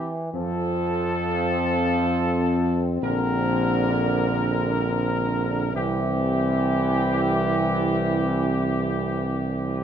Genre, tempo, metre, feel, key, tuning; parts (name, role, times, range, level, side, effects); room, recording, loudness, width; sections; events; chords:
classical; free time; F major; A4 = 440 Hz
warm trumpet section; melody; 0.0-9.8 s; G4 to Bb4; -28 LUFS; equal
dark French horn section; sustained chords; 0.0-9.8 s; C4; -28 LUFS; left 5 dB
warm trombone section; sustained chords; 0.0-9.8 s; D3 to F3; -28 LUFS; right 2 dB
warm tuba; bass; 0.0-9.8 s; Bb1 to F2; -25 LUFS; right 3 dB
light reverb; close, detailed microphones; -21 LUFS; side -8 dB against mid
0.0-9.8 A section
0.3 F; 3.0 Bbadd9; 5.8 C